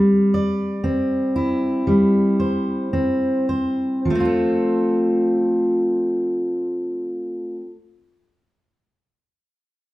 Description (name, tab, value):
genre	folk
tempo	52-61 BPM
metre	4/4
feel	straight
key	F major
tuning	A4 = 443 Hz
part	fingerpicked steel-string acoustic guitar	accompaniment	0.0-7.8 s	F3 to D5	-18 LUFS	equal	none
room	wet large studio reverb, RT60 1.1 s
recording	band playing live in one room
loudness	-18 LUFS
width	side -16 dB against mid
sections	0.0-4.1 A section; 4.1-8.7 B section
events	slowing down 0.0-4.1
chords	0.0 C/G; 4.1 F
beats	0.83 1.86 2.94 | 4.06 5.21 6.37 7.52